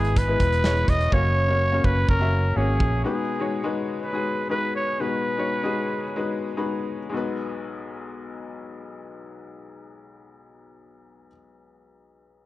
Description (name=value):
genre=piano-driven pop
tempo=106-125 BPM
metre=4/4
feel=straight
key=B major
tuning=A4 = 438 Hz
part: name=growling trumpet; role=melody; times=0.0-6.6 s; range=G#4 to D#5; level=-26 LUFS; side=equal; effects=none
part: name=bright upright piano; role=accompaniment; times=0.0-12.5 s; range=B1 to B5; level=-28 LUFS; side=left 3 dB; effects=none
part: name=vintage muted fingered electric bass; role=bass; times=0.0-3.0 s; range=E1 to A#1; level=-23 LUFS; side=right 1 dB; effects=none
part: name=modern studio drum kit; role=drums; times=0.0-2.9 s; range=hi-hat, kick drum, snare drum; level=-24 LUFS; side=right 1 dB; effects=none
room=light reverb, studio ambience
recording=worn, warbling old tape, cassette tape, warbly pitch drift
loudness=-21 LUFS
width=side -16 dB against mid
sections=0.0-7.1 A section; 7.1-11.7 B section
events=slowing down 3.0-7.1; upright piano fill 6.3-7.1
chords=0.0 E; 1.1 F#; 3.0 B6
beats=0.16 0.64 | 1.12 1.60 2.08 2.56 | 3.04 3.52 4.01 4.50 | 5.00 5.51 6.04 6.57 | 7.13 7.70 8.26 8.82 | 9.39 9.96 10.52 11.09